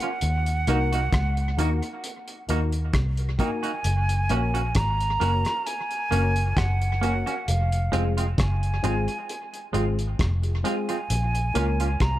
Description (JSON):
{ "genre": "roots reggae", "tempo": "66 BPM", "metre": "4/4", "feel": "straight", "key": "unclear", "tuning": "A4 = 440 Hz", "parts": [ { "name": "hollow concert flute", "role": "melody", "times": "0.0-12.2 s", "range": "F5 to Bb5", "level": "-29 LUFS", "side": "right 2 dB", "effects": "tape echo" }, { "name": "semi-hollow electric guitar", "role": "accompaniment", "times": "0.0-11.9 s", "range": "Ab3 to Gb4", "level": "-32 LUFS", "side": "right 4 dB", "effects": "tape echo" }, { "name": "dark upright piano", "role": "stabs", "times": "0.0-11.8 s", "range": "Ab3 to Bb4", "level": "-32 LUFS", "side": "left 4 dB", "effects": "none" }, { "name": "cloth-damped thuddy drum kit", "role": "drums", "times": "0.0-12.2 s", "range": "hi-hat, kick drum, rim click", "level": "-29 LUFS", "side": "equal", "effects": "tape echo" }, { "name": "vintage muted fingered electric bass", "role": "bass", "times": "0.2-12.2 s", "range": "F1 to Eb2", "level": "-24 LUFS", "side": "equal", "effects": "none" } ], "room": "little or no reverb", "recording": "dark, warm production", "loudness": "-22 LUFS", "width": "side -14 dB against mid", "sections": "0.0-12.2 A section", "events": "none", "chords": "0.2 Ebm; 3.8 Gb; 7.5 Fm; 11.1 Bbm", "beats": "| 0.21 1.12 2.03 2.94 | 3.84 4.75 5.66 6.57 | 7.47 8.38 9.29 10.19 | 11.10 12.01" }